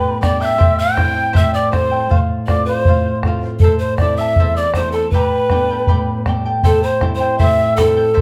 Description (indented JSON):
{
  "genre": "andean folk, Andean ensemble",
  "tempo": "79 BPM",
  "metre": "2/4",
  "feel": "straight",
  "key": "unclear",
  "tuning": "A4 = 440 Hz",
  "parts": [
    { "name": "reedy pan flute", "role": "melody", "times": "0.0-8.2 s", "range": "A4 to G5", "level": "-19 LUFS", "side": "equal", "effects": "none" },
    { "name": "breathy mellow quena", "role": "second line", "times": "0.0-8.2 s", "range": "A5 to G6", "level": "-26 LUFS", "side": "equal", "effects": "none" },
    { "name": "charango", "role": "accompaniment", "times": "0.0-8.2 s", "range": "E4 to A5", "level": "-26 LUFS", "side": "equal", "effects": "none" },
    { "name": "nylon-string guitar", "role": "accompaniment", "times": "0.0-8.2 s", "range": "E2 to F4", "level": "-24 LUFS", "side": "equal", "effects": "none" },
    { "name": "bombo", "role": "percussion", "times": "0.2-8.2 s", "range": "none", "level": "-19 LUFS", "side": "equal", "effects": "none" }
  ],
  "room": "wet large studio reverb, RT60 0.7 s",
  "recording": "band playing live in one room",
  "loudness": "-15 LUFS",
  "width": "mono",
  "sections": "0.0-8.2 A section",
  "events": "none",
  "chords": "0.0 G/A; 0.6 C/A; 2.1 F/A; 3.6 Am; 5.1 G/A; 6.6 C/A"
}